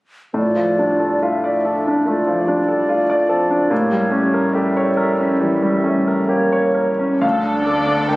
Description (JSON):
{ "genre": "classical", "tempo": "62-74 BPM", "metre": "4/4", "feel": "rubato", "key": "D minor", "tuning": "A4 = 439 Hz", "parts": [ { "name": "bright baby grand piano", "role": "melody", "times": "0.3-8.2 s", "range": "D2 to G5", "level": "-17 LUFS", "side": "equal", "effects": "none" }, { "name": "concert flute", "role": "second line", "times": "0.3-6.9 s", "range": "C#5 to E5", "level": "-24 LUFS", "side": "equal", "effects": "none" }, { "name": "mellow clarinet", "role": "second line", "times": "0.3-6.9 s", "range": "D4 to Bb4", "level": "-24 LUFS", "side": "equal", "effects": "none" }, { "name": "dark bassoon", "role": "accompaniment", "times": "0.3-6.9 s", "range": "G3 to C4", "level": "-24 LUFS", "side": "right 1 dB", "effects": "none" }, { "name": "rich studio violin section", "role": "second line", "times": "7.2-8.2 s", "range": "D4 to A4", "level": "-23 LUFS", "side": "left 1 dB", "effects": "none" }, { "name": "rich studio viola section", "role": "accompaniment", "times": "7.2-8.2 s", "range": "A4 to D5", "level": "-23 LUFS", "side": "right 1 dB", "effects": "none" }, { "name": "rich studio cello section", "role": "bass", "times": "7.2-8.2 s", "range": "D3", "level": "-25 LUFS", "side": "right 1 dB", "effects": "none" }, { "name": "rich studio double bass section", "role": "bass", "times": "7.2-8.2 s", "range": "D2", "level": "-30 LUFS", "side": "right 1 dB", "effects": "none" } ], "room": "moderate scoring stage reverb, RT60 1.9 s", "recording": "recorded on a phone in the room, club reverb, compression", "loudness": "-15 LUFS", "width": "side -20 dB against mid", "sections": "0.3-7.2 A section", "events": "none", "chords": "0.3 Dm/A; 3.7 A7b9; 7.2 Dm" }